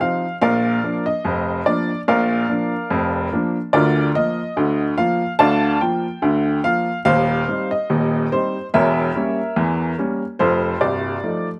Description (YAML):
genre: ragtime piano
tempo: 72 BPM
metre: 2/4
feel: swing 56% on 16ths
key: Bb major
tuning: A4 = 440 Hz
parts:
  - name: clear upright piano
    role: solo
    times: 0.0-11.5 s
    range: C1 to A5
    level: -20 LUFS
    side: equal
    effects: none
room: light reverb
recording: recorded outdoors, with no room sound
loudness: -19 LUFS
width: mono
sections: 0.0-11.6 A section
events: none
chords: 0.4 Bb; 3.7 Bb/D; 7.1 Cm/Eb; 8.7 Edim7; 10.4 F7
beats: | 0.42 1.25 | 2.08 2.92 | 3.75 4.58 | 5.41 6.24 | 7.07 7.90 | 8.73 9.56 | 10.40 11.23